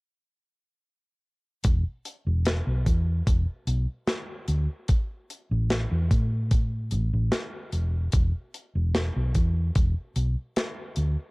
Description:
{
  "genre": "vaporwave",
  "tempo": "74 BPM",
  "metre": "4/4",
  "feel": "swing 53% on 16ths",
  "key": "unclear",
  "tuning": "A4 = 445 Hz",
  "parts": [
    { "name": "hollow-body short-scale fingered electric bass", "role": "bass", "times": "1.6-11.2 s", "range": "E1 to A2", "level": "-24 LUFS", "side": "equal", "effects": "none" },
    { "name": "electronic kick drum", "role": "drums", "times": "1.6-9.9 s", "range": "none", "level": "-23 LUFS", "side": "equal", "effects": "none" },
    { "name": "tight metal drum kit", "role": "drums", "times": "1.6-11.1 s", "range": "hi-hat, snare drum", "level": "-30 LUFS", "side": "equal", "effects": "none" }
  ],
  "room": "little or no reverb",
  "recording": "cassette tape",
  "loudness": "-24 LUFS",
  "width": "side -29 dB against mid",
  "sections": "1.6-11.3 A section",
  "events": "none",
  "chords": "none"
}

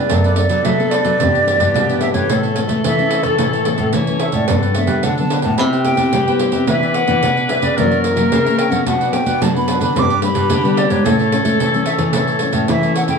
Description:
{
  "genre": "samba and choro",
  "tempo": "110 BPM",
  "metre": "4/4",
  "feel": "straight",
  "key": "unclear",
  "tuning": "A4 = 440 Hz",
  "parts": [
    { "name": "bright wooden flute", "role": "melody", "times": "0.0-13.2 s", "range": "A4 to D6", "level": "-20 LUFS", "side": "right 2 dB", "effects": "none" },
    { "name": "cavaquinho", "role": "accompaniment", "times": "0.0-13.2 s", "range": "D4 to G5", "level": "-26 LUFS", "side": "equal", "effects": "none" },
    { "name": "nylon-string guitar", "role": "accompaniment", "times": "0.0-13.2 s", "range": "F#2 to A4", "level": "-21 LUFS", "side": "left 5 dB", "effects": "none" },
    { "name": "nylon-string guitar", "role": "bass", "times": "0.0-13.2 s", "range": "F#2 to B3", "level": "-19 LUFS", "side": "equal", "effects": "none" },
    { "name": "bright clarinet", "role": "second line", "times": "0.1-13.2 s", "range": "E4 to C#5", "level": "-22 LUFS", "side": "left 4 dB", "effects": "none" },
    { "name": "pandeiro", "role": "percussion", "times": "0.1-13.2 s", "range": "none", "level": "-21 LUFS", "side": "right 5 dB", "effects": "none" }
  ],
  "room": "moderate studio reverb, RT60 0.8 s",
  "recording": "small room ambience",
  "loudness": "-13 LUFS",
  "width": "side -5 dB against mid",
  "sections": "0.0-13.2 A section",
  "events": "none",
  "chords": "0.1 Bm7/F#; 1.2 Em7/G; 2.3 A; 4.5 Gmaj7; 5.6 Cmaj7; 6.7 Em7; 7.8 F#7; 8.9 Bm; 10.0 G; 11.0 A"
}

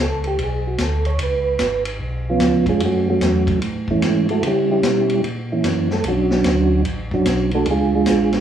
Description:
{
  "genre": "soul jazz organ trio",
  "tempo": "148 BPM",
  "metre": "4/4",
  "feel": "swing 65% on 8ths",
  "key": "F# minor",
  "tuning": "A4 = 440 Hz",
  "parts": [
    { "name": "percussive tonewheel organ", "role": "melody", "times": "0.0-8.4 s", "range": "E3 to C#5", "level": "-18 LUFS", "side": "right 2 dB", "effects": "slow rotary speaker, chorus vibrato" },
    { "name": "mellow tonewheel organ", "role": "bass", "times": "0.0-8.4 s", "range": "G#1 to C#3", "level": "-24 LUFS", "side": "equal", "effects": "overdrive, chorus vibrato, slow rotary speaker" },
    { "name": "vintage drum kit", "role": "drums", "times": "0.2-8.4 s", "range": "hi-hat, kick drum, ride cymbal, snare drum", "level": "-25 LUFS", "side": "left 2 dB", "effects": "none" }
  ],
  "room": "moderate club ambience, RT60 0.5 s",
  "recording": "heard from further back in the room, studio ambience",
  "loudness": "-16 LUFS",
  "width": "side -9 dB against mid",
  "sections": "0.0-8.4 A section",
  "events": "tonewheel organ solo 0.0-8.4",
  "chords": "0.0 Bmadd9; 1.2 C#7; 2.8 F#m9; 4.4 C#m7b5; 5.2 F#7; 6.0 Bm9; 7.7 C#(b9)"
}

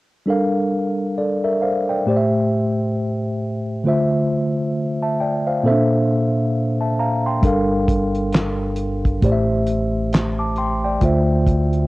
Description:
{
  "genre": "R&B, neo-soul",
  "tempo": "67 BPM",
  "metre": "4/4",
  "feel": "swing 59% on 16ths",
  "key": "G dorian",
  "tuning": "A4 = 440 Hz",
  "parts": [
    { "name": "mellow tine electric piano", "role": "accompaniment", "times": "0.3-11.9 s", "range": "A2 to D6", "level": "-18 LUFS", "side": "equal", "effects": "medium stereo tremolo, cassette tape" },
    { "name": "smooth gliding synth bass", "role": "bass", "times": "7.4-11.9 s", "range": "G1 to D2", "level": "-24 LUFS", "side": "equal", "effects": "none" },
    { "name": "cloth-damped thuddy drum kit", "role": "drums", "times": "7.4-11.9 s", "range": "handclaps, hi-hat, kick drum, snare drum", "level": "-19 LUFS", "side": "equal", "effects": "cassette tape" }
  ],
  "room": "studio ambience",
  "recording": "home recording on cassette",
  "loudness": "-17 LUFS",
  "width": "side -20 dB against mid",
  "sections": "0.3-11.9 A section",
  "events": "none",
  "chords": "0.3 Gm7; 2.1 Am7; 3.9 Dm9; 5.6 Bbmaj9#11; 7.4 Gm7; 9.2 Am7; 11.0 Dm9"
}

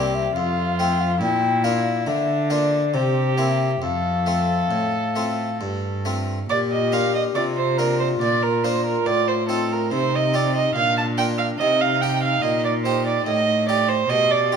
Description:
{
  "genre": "classical, baroque-style sonata movement with continuo",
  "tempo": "70 BPM",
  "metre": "3/4",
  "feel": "rubato",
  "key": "F major, Bb major from 6.5 s",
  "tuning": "A4 = 441 Hz",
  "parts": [
    { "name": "mellow baroque flute", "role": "melody", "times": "0.0-14.6 s", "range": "D4 to G5", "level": "-25 LUFS", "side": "left 9 dB", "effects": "none" },
    { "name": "dark violin", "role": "second line", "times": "0.0-14.6 s", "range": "D4 to A5", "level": "-22 LUFS", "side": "right 5 dB", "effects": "none" },
    { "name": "harpsichord", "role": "accompaniment", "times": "0.0-14.6 s", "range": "C2 to G4", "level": "-27 LUFS", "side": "left 1 dB", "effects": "none" },
    { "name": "rich cello", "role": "bass", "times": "0.0-14.6 s", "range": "C2 to D3", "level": "-25 LUFS", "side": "right 2 dB", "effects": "none" }
  ],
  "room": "moderate recital hall reverb, RT60 1.8 s",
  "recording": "none",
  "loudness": "-19 LUFS",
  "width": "side -6 dB against mid",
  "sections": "0.0-6.5 A section; 6.5-14.6 A section",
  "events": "none",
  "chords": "0.4 F; 1.2 Bb; 2.9 C7; 3.8 F; 6.5 Bb; 9.1 F7/A; 10.8 Bb; 11.6 Cm"
}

